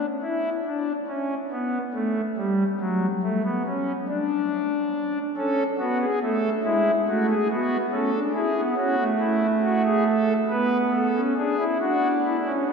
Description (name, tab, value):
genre	classical, baroque-style 4-part fugue for pipe organ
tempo	47 BPM (dotted quarters)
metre	12/8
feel	straight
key	unclear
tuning	A4 = 440 Hz
part	pipe organ, foundations	solo	0.0-12.7 s	F#3 to B4	-22 LUFS	equal	none
room	wet cathedral reverb, RT60 5.3 s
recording	heard from further back in the room, nothing above 10.5 kHz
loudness	-22 LUFS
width	side -5 dB against mid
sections	0.0-12.7 A section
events	none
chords	0.0 N.C.; 5.4 A; 10.5 Bm